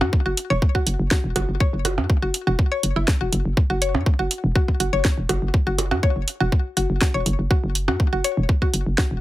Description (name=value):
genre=minimal techno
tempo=122 BPM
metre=4/4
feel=straight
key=unclear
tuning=A4 = 440 Hz
part: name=mallet-like synth pluck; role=riff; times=0.0-9.0 s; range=E4 to C#5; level=-26 LUFS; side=left 2 dB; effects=chorus, sidechain pumping, ping-pong delay
part: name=hollow knocking FM bass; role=bass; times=0.0-9.2 s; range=E1 to F#2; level=-23 LUFS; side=equal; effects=sidechain pumping
part: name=percussion blips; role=percussion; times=0.0-8.0 s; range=none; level=-26 LUFS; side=right 4 dB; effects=overdrive, ping-pong delay
part: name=electronic kick drum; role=drums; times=0.1-9.1 s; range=none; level=-18 LUFS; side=equal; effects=overdrive
part: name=garage drum kit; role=drums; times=0.4-9.1 s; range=hi-hat, snare drum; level=-23 LUFS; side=right 1 dB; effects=overdrive
room=little or no reverb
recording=heavily compressed radio sound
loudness=-19 LUFS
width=side -16 dB against mid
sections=0.0-9.2 A section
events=none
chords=0.0 F#5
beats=0.13 0.62 1.11 | 1.60 2.10 2.59 3.08 | 3.57 4.06 4.55 5.05 | 5.54 6.03 6.52 7.01 | 7.51 8.00 8.49 8.98